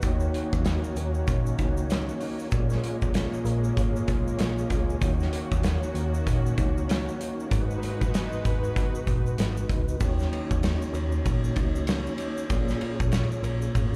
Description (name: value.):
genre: indie pop, bedroom pop.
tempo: 96 BPM.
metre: 4/4.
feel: swing 60% on 16ths.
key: Eb minor.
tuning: A4 = 441 Hz.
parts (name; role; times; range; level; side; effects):
mellow tonewheel organ; accompaniment; 0.0-14.0 s; Ab3 to Db5; -35 LUFS; equal; chorus vibrato, fast rotary speaker, slapback echo.
nylon-string guitar; accompaniment; 0.0-14.0 s; Ab2 to Cb5; -37 LUFS; equal; subtle chorus, vibrato effect.
lush unison pad; sustained chords; 0.0-10.0 s; Eb3 to Cb5; -39 LUFS; equal; chorus.
vintage muted picked electric bass; bass; 0.0-14.0 s; Gb1 to Eb2; -30 LUFS; equal; none.
loose indie drum kit; drums; 0.0-13.9 s; hi-hat, kick drum, ride cymbal, snare drum; -31 LUFS; equal; none.
tube shaker; percussion; 0.0-13.9 s; none; -53 LUFS; equal; none.
room: studio reverb.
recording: live gig heard through the venue's PA, club reverb.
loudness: -27 LUFS.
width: mono.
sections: 0.0-10.0 A section; 10.0-14.0 A section.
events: none.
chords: 0.0 Ebm7; 2.5 Bbm7; 5.0 Ebm7; 7.5 Abm7; 10.0 Ebm7; 12.5 Bbm7.